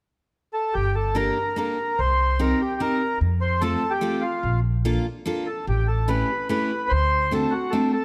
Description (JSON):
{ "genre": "musette waltz", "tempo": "146 BPM", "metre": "3/4", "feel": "straight", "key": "G minor", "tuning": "A4 = 440 Hz", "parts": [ { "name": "mellow accordion", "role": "melody", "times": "0.5-8.0 s", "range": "F4 to C5", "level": "-26 LUFS", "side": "equal", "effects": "none" }, { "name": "upright bass", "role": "bass", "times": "0.8-7.4 s", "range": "G1 to F2", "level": "-26 LUFS", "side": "equal", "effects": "none" }, { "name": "picked steel-string acoustic guitar", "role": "accompaniment", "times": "1.1-7.9 s", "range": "A3 to Bb4", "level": "-28 LUFS", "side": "equal", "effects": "none" } ], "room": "moderate recital hall reverb, RT60 1.8 s", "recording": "close, detailed microphones", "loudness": "-23 LUFS", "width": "mono", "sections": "0.7-8.0 A section", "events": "none", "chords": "0.0 N.C.; 0.7 Gmadd9; 2.0 Cm7; 3.2 F; 4.4 Bbmaj7; 5.7 A7; 6.9 D7" }